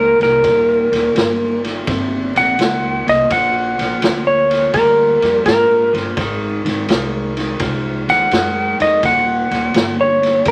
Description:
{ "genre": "electric blues shuffle", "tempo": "84 BPM", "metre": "4/4", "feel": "swing 68% on 8ths", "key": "unclear", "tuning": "A4 = 440 Hz", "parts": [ { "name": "clean lap steel guitar", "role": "melody", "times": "0.0-10.5 s", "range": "Bb4 to Gb5", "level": "-16 LUFS", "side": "equal", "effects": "none" }, { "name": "electric guitar through a small old amp", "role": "riff", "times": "0.0-10.5 s", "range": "Eb2 to G3", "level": "-24 LUFS", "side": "equal", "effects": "none" }, { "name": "upright bass", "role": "bass", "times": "0.0-10.5 s", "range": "Eb1 to Ab2", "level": "-30 LUFS", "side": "equal", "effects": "none" }, { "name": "vintage drum kit", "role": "drums", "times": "0.2-10.5 s", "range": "kick drum, ride cymbal, snare drum", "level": "-23 LUFS", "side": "equal", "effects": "none" } ], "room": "wet studio reverb, RT60 0.8 s", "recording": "vinyl crackle", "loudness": "-16 LUFS", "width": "mono", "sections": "0.0-10.5 A section", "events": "electric slide guitar solo 0.0-10.5", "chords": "0.0 Eb7; 3.3 Bb7; 6.2 Ab7; 9.0 Eb7" }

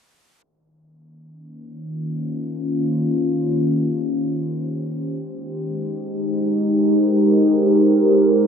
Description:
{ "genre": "ambient", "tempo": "free time", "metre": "none", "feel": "none", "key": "Eb mixolydian", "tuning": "A4 = 440 Hz", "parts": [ { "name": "warbly tape-like pad", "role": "sustained chords", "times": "1.8-8.5 s", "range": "Eb3 to C5", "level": "-18 LUFS", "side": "equal", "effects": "chorus, built-in reverb" } ], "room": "wet recital hall reverb, RT60 1.5 s", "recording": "low-pass filter", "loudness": "-17 LUFS", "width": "side -7 dB against mid", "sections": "0.4-8.5 A section", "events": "filter sweep on ambient pad 0.4-8.5; filter sweep 0.4-8.5", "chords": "0.4 Eb13; 5.1 Abmaj9" }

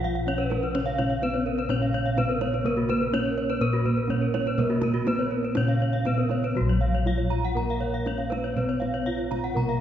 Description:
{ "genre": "Balinese gamelan", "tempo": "123 BPM", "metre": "4/4", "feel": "straight", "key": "Bb pelog", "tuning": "A4 = 443 Hz", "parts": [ { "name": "gamelan-type bronze metallophone", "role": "melody", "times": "0.0-9.8 s", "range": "Gb3-20c to Bb4", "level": "-29 LUFS", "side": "equal", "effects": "none" }, { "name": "gamelan-type bronze metallophone", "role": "accompaniment", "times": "0.0-9.8 s", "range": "Db3-30c to Cb4+20c", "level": "-34 LUFS", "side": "equal", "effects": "none" }, { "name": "gamelan-type bronze metallophone", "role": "arpeggios", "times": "0.0-9.8 s", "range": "Gb4-20c to Bb5", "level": "-31 LUFS", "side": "left 3 dB", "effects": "none" }, { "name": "gamelan-type bronze metallophone", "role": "arpeggios", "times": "0.0-9.4 s", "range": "Gb4-20c to Bb5", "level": "-32 LUFS", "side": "right 3 dB", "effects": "none" }, { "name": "gamelan-type bossed gongs", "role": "bass", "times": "0.0-9.8 s", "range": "Bb1 to Cb5+20c", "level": "-28 LUFS", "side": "equal", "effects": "none" }, { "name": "kendang", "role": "percussion", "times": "0.0-9.8 s", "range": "none", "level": "-34 LUFS", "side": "right 3 dB", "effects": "none" } ], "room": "wet concert hall reverb, RT60 2.1 s", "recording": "recorded in a church or concert hall, nothing above 7.6 kHz", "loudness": "-23 LUFS", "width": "side -10 dB against mid", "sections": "0.0-6.6 A section; 6.6-9.8 B section", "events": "none", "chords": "none" }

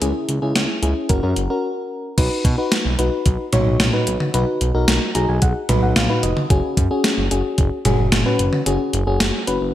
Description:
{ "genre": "synth-pop", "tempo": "111 BPM", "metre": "4/4", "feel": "straight", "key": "unclear", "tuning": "A4 = 440 Hz", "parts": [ { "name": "mellow FM electric piano", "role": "accompaniment", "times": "0.0-9.7 s", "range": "C#4 to A#5", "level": "-21 LUFS", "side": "left 2 dB", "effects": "chorus" }, { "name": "smooth synth bass", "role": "bass", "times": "0.0-9.7 s", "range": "E#1 to B2", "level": "-21 LUFS", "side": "equal", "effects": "none" }, { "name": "gated 80s digital drum machine", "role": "drums", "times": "0.0-9.6 s", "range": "crash cymbal, hi-hat, kick drum, snare drum, toms", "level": "-19 LUFS", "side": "equal", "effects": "gated reverb, gated reverb snare" } ], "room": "light reverb, digital ambience", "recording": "bright 1980s-style digital production", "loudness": "-16 LUFS", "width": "side -12 dB against mid", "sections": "0.0-2.2 A section; 2.2-9.7 B section", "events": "break 1.6-2.2; FM electric piano fill 4.9-6.5", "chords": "0.0 C#m; 1.1 F#; 2.2 B; 6.5 F#sus2" }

